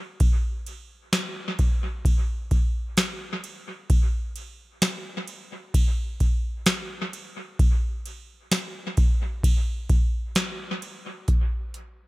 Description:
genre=dream pop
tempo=65 BPM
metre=4/4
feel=straight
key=none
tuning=none
part: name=booming analog drum machine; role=drums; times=0.2-12.0 s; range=hi-hat, kick drum, ride cymbal, snare drum, tambourine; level=-22 LUFS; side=equal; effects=dub echo
room=little or no reverb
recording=echo-heavy mix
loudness=-23 LUFS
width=side -21 dB against mid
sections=0.0-11.3 A section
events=none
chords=none

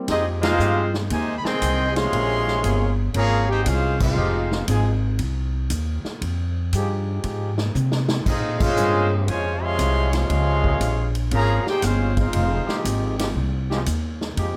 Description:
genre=jazz, big band swing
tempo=118 BPM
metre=4/4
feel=swing 67% on 8ths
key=F minor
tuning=A4 = 440 Hz
part: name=clear trumpet section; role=melody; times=0.1-4.7, 8.3-12.8 s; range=C4 to C6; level=-28 LUFS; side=equal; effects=none
part: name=clear trombone section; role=second line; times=0.1-4.6, 8.3-12.8 s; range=C3 to G4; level=-27 LUFS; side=equal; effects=none
part: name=brilliant trombone section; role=sustained chords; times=0.1-14.6 s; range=Db3 to Ab4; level=-32 LUFS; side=equal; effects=none
part: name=upright bass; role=bass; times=0.1-14.6 s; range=F1 to C3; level=-25 LUFS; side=equal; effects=none
part: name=swinging big-band drum kit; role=drums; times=0.1-14.5 s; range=crash cymbal, hi-hat, kick drum, ride cymbal, snare drum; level=-31 LUFS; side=equal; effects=none
room=light reverb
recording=none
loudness=-22 LUFS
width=mono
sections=0.1-14.6 A section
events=band accent 0.3, 3.9, 8.5; drum fill 7.7-8.3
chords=0.1 Fm9; 2.1 Bbm9; 4.2 Fm9; 8.3 Bbm9; 12.3 Fm9

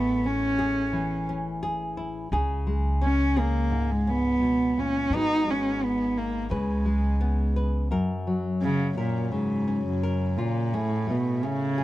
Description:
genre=acoustic folk-pop ballad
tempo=86 BPM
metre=4/4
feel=straight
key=unclear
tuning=A4 = 440 Hz
part: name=dark cello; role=melody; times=0.0-11.8 s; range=F#2 to D#4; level=-25 LUFS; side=right 1 dB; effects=none
part: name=nylon-string guitar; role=accompaniment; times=0.0-11.8 s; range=F#2 to B4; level=-30 LUFS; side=left 2 dB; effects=none
part: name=upright bass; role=bass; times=0.0-7.9 s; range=G#1 to C#2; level=-28 LUFS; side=equal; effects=none
room=light reverb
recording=dark, warm production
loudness=-23 LUFS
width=side -15 dB against mid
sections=0.0-7.9 A section; 7.9-11.8 A section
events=none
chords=0.0 Amaj7; 2.3 C#5; 5.1 G#m7; 6.5 C#5; 7.9 F#; 10.7 Amaj7

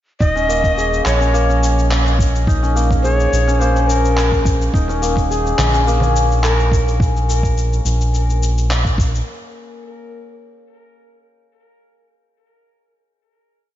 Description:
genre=organic downtempo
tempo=106 BPM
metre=4/4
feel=straight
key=unclear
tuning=A4 = 441 Hz
part: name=breathy Native American-style cedar flute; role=melody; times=0.2-7.0 s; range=Bb4 to Eb5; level=-22 LUFS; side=equal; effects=tape echo, slapback echo
part: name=santur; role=arpeggios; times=0.2-10.2 s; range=Bb3 to Ab4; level=-21 LUFS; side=left 2 dB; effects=tape echo, slapback echo
part: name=smooth synth bass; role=bass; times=0.2-9.2 s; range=Eb1 to Bb1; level=-17 LUFS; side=equal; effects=none
part: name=electronic kick drum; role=drums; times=0.2-9.1 s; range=none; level=-18 LUFS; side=equal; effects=none
part: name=electronic shaker and handclaps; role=drums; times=0.2-9.2 s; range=none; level=-25 LUFS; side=equal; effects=none
part: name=darbuka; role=percussion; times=4.9-7.0 s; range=none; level=-26 LUFS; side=right 2 dB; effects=none
room=moderate lush hall reverb, RT60 2.4 s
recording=big arena sound, nothing above 7.5 kHz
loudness=-14 LUFS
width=side -12 dB against mid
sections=0.2-9.3 groove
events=none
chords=0.2 Eb5

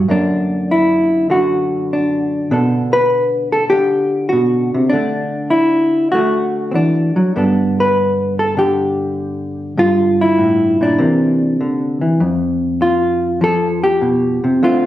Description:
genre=solo jazz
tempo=99 BPM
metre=4/4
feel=swing 69% on 8ths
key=unclear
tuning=A4 = 439 Hz
part: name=hollow-body jazz guitar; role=solo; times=0.0-14.9 s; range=F2 to B4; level=-13 LUFS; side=equal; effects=none
room=light reverb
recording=recorded on a phone in the room, studio reverb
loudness=-13 LUFS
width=side -13 dB against mid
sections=0.0-12.2 A section; 12.2-14.9 B section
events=none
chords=0.1 F#aug7; 2.5 Bm7; 4.9 Dadd9; 7.4 Gadd9; 9.8 Gm7; 11.0 C9; 12.2 Fsus2

